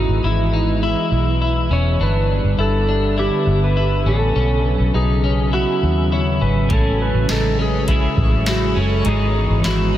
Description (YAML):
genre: dream pop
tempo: 102 BPM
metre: 4/4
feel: straight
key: unclear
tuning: A4 = 441 Hz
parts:
  - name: clean lap steel guitar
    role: melody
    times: 0.0-10.0 s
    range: E4 to C#5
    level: -23 LUFS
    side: right 2 dB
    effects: tape echo
  - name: lush unison pad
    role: sustained chords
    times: 0.0-10.0 s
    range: C#3 to B3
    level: -22 LUFS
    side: equal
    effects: chorus
  - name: clean electric guitar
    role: arpeggios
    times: 0.0-10.0 s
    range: C#4 to E4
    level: -24 LUFS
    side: left 4 dB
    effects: lush chorus, tape echo
  - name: vintage muted fingered electric bass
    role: bass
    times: 0.0-10.0 s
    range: E1 to D#2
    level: -19 LUFS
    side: equal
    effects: none
  - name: clean electric guitar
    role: accompaniment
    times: 6.7-10.0 s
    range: G#2 to G#4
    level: -26 LUFS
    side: right 2 dB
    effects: tremolo, wide subtle chorus
  - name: booming analog drum machine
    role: drums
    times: 6.7-9.8 s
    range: hi-hat, kick drum, snare drum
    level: -22 LUFS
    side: equal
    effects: none
  - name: twinkling granular texture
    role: texture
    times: 7.7-10.0 s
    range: C#5 to G#5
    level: -35 LUFS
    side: right 1 dB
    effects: built-in reverb, tape echo
room: moderate huge ambient reverb, RT60 9.3 s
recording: dreamy mix soaked in reverb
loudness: -15 LUFS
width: side -12 dB against mid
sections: 0.0-10.0 A section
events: none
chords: 0.0 Emaj7/G#; 2.0 G6; 4.4 B9sus4; 6.7 Amaj7; 9.1 Emaj7/G#